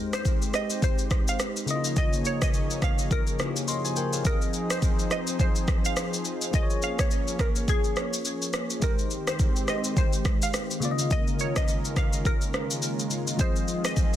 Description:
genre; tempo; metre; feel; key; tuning
afrobeats; 105 BPM; 4/4; swing 58% on 16ths; unclear; A4 = 441 Hz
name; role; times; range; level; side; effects
bell-like tine electric piano; accompaniment; 0.0-14.2 s; Db3 to C6; -32 LUFS; left 4 dB; phaser
warm analog pad; sustained chords; 0.0-14.2 s; Eb3 to Db5; -33 LUFS; right 1 dB; chorus, sidechain pumping
glassy wavetable pluck; melody; 0.1-14.1 s; Ab4 to F5; -34 LUFS; right 1 dB; chorus, digital delay
afro-pop drum kit; drums; 0.1-14.2 s; kick drum, rim click, shaker; -26 LUFS; equal; overdrive
room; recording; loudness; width
digital ambience; dense, heavily limited modern master; -24 LUFS; side -12 dB against mid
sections
0.0-14.2 A section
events
none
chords
0.0 Abmaj7; 1.7 Db69; 4.3 Fm7; 6.5 Bbm7; 8.8 Abmaj7; 10.8 Db69; 13.4 Fm7

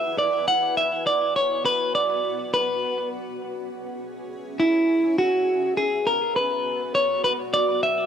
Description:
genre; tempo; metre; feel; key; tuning
IDM; 102 BPM; 4/4; swing 56% on 16ths; unclear; A4 = 440 Hz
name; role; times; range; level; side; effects
clean electric guitar; melody; 0.0-8.1 s; E4 to F#5; -21 LUFS; equal; tape echo
granular cloud pad; sustained chords; 0.0-8.1 s; B3 to G#5; -32 LUFS; left 1 dB; built-in reverb
room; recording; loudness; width
light reverb; rough home demo mix; -20 LUFS; side -8 dB against mid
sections
0.0-8.1 A section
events
none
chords
0.0 Bm6; 2.8 C#m7; 5.2 Bm6

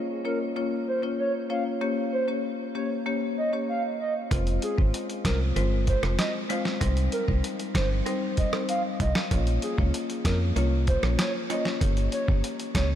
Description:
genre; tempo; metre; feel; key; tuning
dancehall; 96 BPM; 4/4; straight; unclear; A4 = 440 Hz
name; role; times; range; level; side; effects
hollow clarinet-like synth lead; melody; 0.2-12.9 s; Ab4 to F5; -31 LUFS; right 1 dB; chorus, analog delay
marimba with medium mallets; accompaniment; 0.2-12.9 s; G3 to Db5; -30 LUFS; left 3 dB; sidechain pumping
organ-like FM bass; bass; 4.3-13.0 s; F1 to F2; -25 LUFS; equal; none
dusty soul sampler-style drum kit; drums; 4.3-12.9 s; hi-hat, kick drum, rim click, snare drum; -28 LUFS; equal; none
bongos; percussion; 4.3-12.0 s; none; -40 LUFS; right 12 dB; none
room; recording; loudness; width
moderate huge ambient reverb, RT60 7.5 s; dreamy mix soaked in reverb; -24 LUFS; side -10 dB against mid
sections
0.0-13.0 A section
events
none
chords
0.0 Bbm; 1.8 Gdim; 4.3 Fm; 6.8 Cm; 9.3 Bbm; 11.8 Gdim

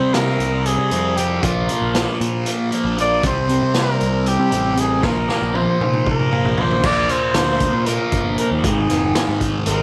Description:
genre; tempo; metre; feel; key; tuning
psychedelic rock; 233 BPM (eighths); 7/8; straight; unclear; A4 = 440 Hz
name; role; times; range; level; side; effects
clear flugelhorn; melody; 0.0-9.8 s; F4 to D5; -24 LUFS; equal; slapback echo
fuzz guitar; riff; 0.0-9.8 s; Ab2 to C4; -23 LUFS; equal; distortion, phaser
fuzz picked electric bass; bass; 0.0-9.8 s; F1 to C3; -25 LUFS; equal; overdrive
raw garage drum kit; drums; 0.1-9.8 s; crash cymbal, hi-hat, kick drum, snare drum, toms; -24 LUFS; equal; none
room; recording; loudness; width
light reverb, small room ambience; none; -18 LUFS; mono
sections
0.0-6.8 A section; 6.8-9.8 B section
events
drum fill 5.0-6.8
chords
0.0 C5; 1.4 Bb5; 3.2 C5; 5.0 Bbsus2; 6.8 Bb; 8.6 Ab5

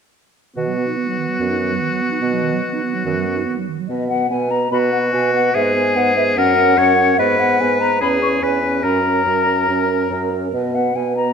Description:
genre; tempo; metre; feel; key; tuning
quick classical-period movement for wind quintet; 145 BPM; 4/4; straight; B major; A4 = 440 Hz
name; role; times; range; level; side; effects
bright oboe; second line; 0.6-10.3 s; F#4 to C#5; -20 LUFS; left 2 dB; none
mellow clarinet; accompaniment; 0.6-11.3 s; D#3 to B4; -24 LUFS; right 10 dB; none
warm French horn; accompaniment; 0.6-11.3 s; B3 to C#4; -24 LUFS; right 1 dB; none
mellow bassoon; bass; 0.6-11.3 s; E2 to B2; -22 LUFS; right 2 dB; none
mellow hollow concert flute; melody; 3.9-11.3 s; D#5 to C#6; -20 LUFS; left 6 dB; none
room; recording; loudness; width
moderate scoring stage reverb, RT60 1.6 s; none; -15 LUFS; side -6 dB against mid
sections
0.6-3.9 A section; 3.9-11.3 B section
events
none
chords
0.6 B; 3.9 B5; 5.5 G#m7; 6.4 F#; 7.2 G#m; 8.0 C#m7/E; 8.8 F#; 10.5 B

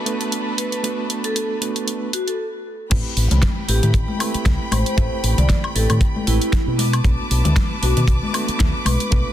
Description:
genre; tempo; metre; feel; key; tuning
nu-disco, nu disco; 116 BPM; 4/4; swing 55% on 16ths; A dorian; A4 = 440 Hz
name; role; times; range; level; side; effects
bright reed electric piano; accompaniment; 0.0-9.3 s; A3 to B4; -28 LUFS; right 3 dB; fast tremolo, sidechain pumping, dub echo
bright symphonic violin section; sustained chords; 0.0-9.3 s; A3 to D6; -29 LUFS; left 1 dB; sidechain pumping
pop drum kit; drums; 0.1-9.2 s; crash cymbal, hi-hat, snare drum, woodblock; -25 LUFS; equal; overdrive
vibraphone with hard mallets; melody; 0.6-9.3 s; E4 to D5; -27 LUFS; equal; vintage 12-bit sampler grit, digital delay
fingered electric bass with an envelope filter; bass; 2.9-9.2 s; A1 to B2; -19 LUFS; equal; sidechain pumping
kick drum; drums; 2.9-9.2 s; none; -18 LUFS; equal; none
congas; percussion; 3.3-9.0 s; none; -27 LUFS; left 4 dB; none
room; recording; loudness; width
studio reverb; dense, heavily limited modern master; -17 LUFS; side -12 dB against mid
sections
0.0-2.9 A section; 2.9-9.3 B section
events
stop 2.4-2.9; drop 2.9-9.3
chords
0.0 Bm7; 2.7 N.C.; 2.9 Am9; 6.8 Bm7

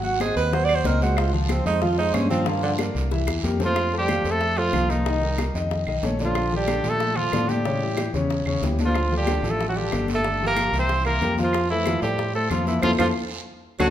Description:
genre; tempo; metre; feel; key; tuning
Afro-Cuban jazz; 185 BPM; 4/4; straight; F major; A4 = 440 Hz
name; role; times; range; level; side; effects
clear tenor saxophone; second line; 0.0-13.9 s; D3 to D5; -27 LUFS; right 4 dB; none
warm concert grand piano; accompaniment; 0.0-13.9 s; C#3 to Gb5; -27 LUFS; left 3 dB; none
fingered electric bass; bass; 0.0-13.9 s; G1 to Bb2; -26 LUFS; equal; none
bongos; percussion; 0.0-13.9 s; none; -34 LUFS; left 5 dB; none
congas; percussion; 0.0-13.9 s; none; -30 LUFS; left 2 dB; none
claves; percussion; 0.2-13.9 s; none; -36 LUFS; right 3 dB; none
guiro; percussion; 0.2-13.9 s; none; -38 LUFS; right 5 dB; none
bright trumpet; melody; 3.7-13.9 s; Eb4 to C5; -25 LUFS; right 1 dB; none
room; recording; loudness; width
wet large studio reverb, RT60 1.4 s; minimal, uncompressed stereo recording; -20 LUFS; side -11 dB against mid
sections
0.0-3.8 A section; 3.8-13.9 B section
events
tenor saxophone solo 0.0-3.8; drum fill 3.1-3.8, 13.6; band accent 12.8-13.9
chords
0.0 Ab7; 1.2 Dbmaj7; 2.5 Gm7; 3.1 C7; 3.8 Fadd9; 5.1 Cm7; 5.7 Faug7; 6.4 Bbmaj7; 7.7 A7; 8.9 Dmadd11; 10.2 Gm7; 10.9 C7; 11.5 Fmaj9

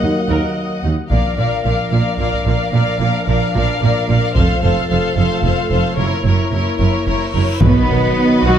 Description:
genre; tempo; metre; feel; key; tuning
cinematic, epic orchestral film score; 74 BPM (dotted quarters); 6/8; straight; Bb major; A4 = 440 Hz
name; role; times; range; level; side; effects
dark symphonic violin section; melody; 0.0-8.6 s; B4 to Gb5; -23 LUFS; left 5 dB; none
clear studio violin section; second line; 0.0-8.6 s; Bb4 to Eb5; -24 LUFS; left 3 dB; none
rich symphonic viola section; accompaniment; 0.0-8.6 s; D#3 to Bb4; -25 LUFS; right 1 dB; none
dark trombone section; sustained chords; 0.0-0.8, 7.6-8.6 s; D#3 to Bb3; -23 LUFS; right 2 dB; none
mellow French horn section; sustained chords; 0.0-8.6 s; F3 to F#4; -27 LUFS; left 5 dB; none
clear tuba; bass; 0.0-0.9 s; Eb2; -24 LUFS; right 2 dB; none
rich symphonic cello section; bass; 0.0-8.6 s; Eb2 to F#4; -19 LUFS; right 3 dB; none
rich symphonic double bass section; bass; 0.0-8.5 s; F1 to Eb2; -19 LUFS; right 3 dB; none
taiko ensemble; drums; 1.1-8.1 s; none; -17 LUFS; equal; none
reverse cymbal and impact; sound effects; 7.3-8.6 s; none; -27 LUFS; equal; none
room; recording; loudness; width
moderate recital hall reverb, RT60 1.5 s; dark, warm production; -14 LUFS; side -9 dB against mid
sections
0.0-1.1 A section; 1.1-7.6 B section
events
reverse cymbal 7.3-7.6; impact 7.6-8.6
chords
0.0 Ebm; 1.1 Bb; 4.4 F; 6.0 Gb7; 7.6 B

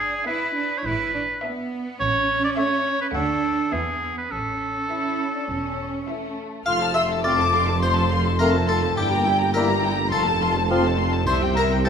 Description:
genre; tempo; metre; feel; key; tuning
cinematic, playful, whimsical film cue; 104 BPM; 4/4; straight; A major, F major from 6.7 s; A4 = 440 Hz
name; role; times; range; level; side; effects
bright oboe; second line; 0.0-11.9 s; G#4 to G5; -25 LUFS; right 1 dB; none
rich studio cello section; bass; 0.0-11.9 s; F2 to E4; -28 LUFS; right 3 dB; none
warm symphonic double bass section; bass; 0.0-11.9 s; E1 to E2; -29 LUFS; right 2 dB; none
rich chamber violin section; melody; 0.3-11.9 s; E5 to C6; -28 LUFS; left 5 dB; none
rich studio violin section; second line; 0.3-11.9 s; A3 to F6; -29 LUFS; left 3 dB; none
warm chamber viola section; accompaniment; 0.3-11.9 s; E3 to A4; -29 LUFS; right 1 dB; none
harpsichord; melody; 6.7-11.9 s; G4 to F5; -27 LUFS; left 3 dB; none
mellow silver concert flute; second line; 6.7-11.9 s; G5 to F6; -27 LUFS; left 1 dB; none
dark tuba; bass; 6.7-11.9 s; F1 to C2; -28 LUFS; right 2 dB; none
mellow bassoon; accompaniment; 7.2-11.9 s; F3 to A3; -30 LUFS; right 1 dB; none
dark French horn section; sustained chords; 7.2-11.9 s; A3 to F4; -31 LUFS; left 5 dB; none
mellow clarinet; second line; 7.3-11.9 s; Bb3 to C4; -31 LUFS; left 1 dB; none
room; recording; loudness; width
wet scoring stage reverb, RT60 2.0 s; minimal, uncompressed stereo recording; -20 LUFS; side -7 dB against mid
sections
0.0-6.7 A section; 6.7-11.9 B section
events
none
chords
0.0 E7/G#; 2.0 A; 3.1 Dmaj7; 3.7 E; 4.3 A; 6.7 F; 9.0 Edim/G; 10.1 F; 11.3 C

